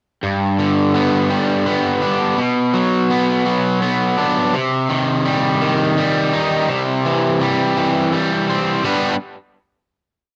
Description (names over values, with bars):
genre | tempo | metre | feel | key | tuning
rock | 56 BPM (dotted quarters) | 6/8 | straight | G major | A4 = 440 Hz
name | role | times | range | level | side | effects
crunchy overdriven guitar | solo | 0.2-9.1 s | G2 to B4 | -17 LUFS | equal | slapback echo
room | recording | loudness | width
little or no reverb | recorded outdoors, with no room sound | -17 LUFS | mono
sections
0.2-8.9 verse; 8.9-10.4 final chord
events
none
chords
0.2 G; 2.4 Bm; 4.5 Cm; 6.7 C; 8.9 G